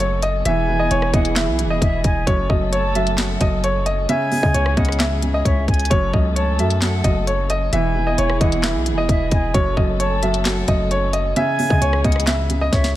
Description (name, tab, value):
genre	hip hop, trap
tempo	132 BPM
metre	4/4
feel	half-time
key	F# dorian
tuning	A4 = 440 Hz
part	dark grand piano	melody	0.0-12.9 s	C#5 to E5	-22 LUFS	equal	none
part	felt-muted upright piano	accompaniment	0.0-13.0 s	F#2 to E3	-24 LUFS	right 3 dB	none
part	dark studio string section	sustained chords	0.0-13.0 s	E3 to A4	-29 LUFS	left 2 dB	none
part	hard-hitting 808-style bass	bass	0.0-13.0 s	E1 to C#3	-22 LUFS	equal	none
part	trap drum kit	drums	0.0-12.9 s	handclaps, hi-hat, kick drum, rim click, snare drum	-21 LUFS	equal	none
part	silver concert flute	second line	0.5-12.9 s	E5 to A5	-27 LUFS	right 1 dB	digital delay
room	small room ambience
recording	none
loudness	-16 LUFS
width	side -14 dB against mid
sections	0.0-13.0 A section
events	drum fill 12.7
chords	0.5 Emaj7; 2.3 F#m; 4.1 C#m; 5.9 F#m; 7.7 Emaj7; 9.5 F#m; 11.4 C#m